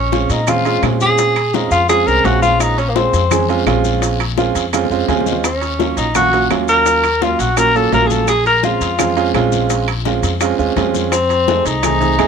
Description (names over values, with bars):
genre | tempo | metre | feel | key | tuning
Afro-Cuban jazz | 169 BPM | 4/4 | straight | Bb minor | A4 = 440 Hz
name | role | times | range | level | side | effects
mellow tenor saxophone | melody | 0.0-12.3 s | Bb3 to Bb4 | -15 LUFS | left 1 dB | none
upright bass | bass | 0.0-12.3 s | Bb1 to Bb2 | -20 LUFS | left 1 dB | none
warm grand piano | accompaniment | 0.1-12.3 s | Gb3 to Ab5 | -18 LUFS | right 9 dB | none
bongos | percussion | 0.1-12.3 s | none | -25 LUFS | left 14 dB | none
congas | percussion | 0.1-12.3 s | none | -26 LUFS | left 15 dB | none
guiro | percussion | 0.1-12.3 s | none | -29 LUFS | left 17 dB | none
maracas | percussion | 0.1-12.3 s | none | -29 LUFS | left 15 dB | none
timbales | percussion | 0.1-12.3 s | none | -27 LUFS | right 13 dB | none
claves | percussion | 0.5-12.3 s | none | -27 LUFS | right 13 dB | none
room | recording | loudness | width
light reverb, small room ambience | 1960s-style stereo with parts hard left and right | -12 LUFS | side -6 dB against mid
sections
0.0-12.3 A section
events
drum fill 4.4-5.4; grand piano fill 4.9-5.4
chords
0.0 Bbm9; 5.4 Ebm7; 8.3 Bbm9; 11.1 F7#9